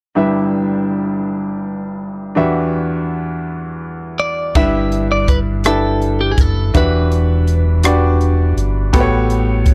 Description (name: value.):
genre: slow gospel.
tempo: 55 BPM (dotted quarters).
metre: 6/8.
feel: straight.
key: G major.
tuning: A4 = 438 Hz.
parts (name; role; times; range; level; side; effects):
bright grand piano; accompaniment; 0.2-9.7 s; G1 to E5; -20 LUFS; equal; none.
clean electric guitar; melody; 4.2-8.2 s; G4 to E5; -22 LUFS; equal; none.
fingered electric bass; bass; 4.5-9.7 s; E1 to A1; -18 LUFS; equal; none.
crisp fusion drum kit; drums; 4.5-9.7 s; crash cymbal, hi-hat, kick drum, rim click; -17 LUFS; equal; none.
room: studio reverb.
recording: dry, close 1970s-style studio recording.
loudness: -16 LUFS.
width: mono.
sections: 0.2-4.6 A section; 4.6-9.7 B section.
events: none.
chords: 0.2 G6; 2.4 Em9; 4.6 G6; 6.7 Em9; 8.9 A13.